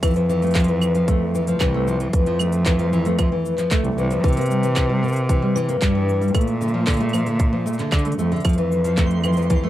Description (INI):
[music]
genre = folktronica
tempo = 114 BPM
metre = 4/4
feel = straight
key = F major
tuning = A4 = 438 Hz
[part]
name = nylon-string guitar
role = arpeggios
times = 0.0-9.7 s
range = D3 to Bb3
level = -22 LUFS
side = left 1 dB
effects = tape echo
[part]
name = rich cello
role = bass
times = 0.0-9.7 s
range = C2 to D3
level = -21 LUFS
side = equal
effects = none
[part]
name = electronic kick drum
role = drums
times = 0.0-9.6 s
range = none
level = -20 LUFS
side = equal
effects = overdrive
[part]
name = organic electronic drum kit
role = drums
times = 0.0-9.6 s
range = cabasa, claves, handclaps, hi-hat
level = -29 LUFS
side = right 2 dB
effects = overdrive
[part]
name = twinkling granular texture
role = texture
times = 8.9-9.7 s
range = C6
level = -35 LUFS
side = right 9 dB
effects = built-in reverb
[sound]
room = little or no reverb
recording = dry, close 1970s-style studio recording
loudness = -17 LUFS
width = side -13 dB against mid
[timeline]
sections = 0.0-9.7 A section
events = none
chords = 0.0 Fmaj7; 4.2 C7; 6.3 Bbmaj7; 8.4 Fmaj7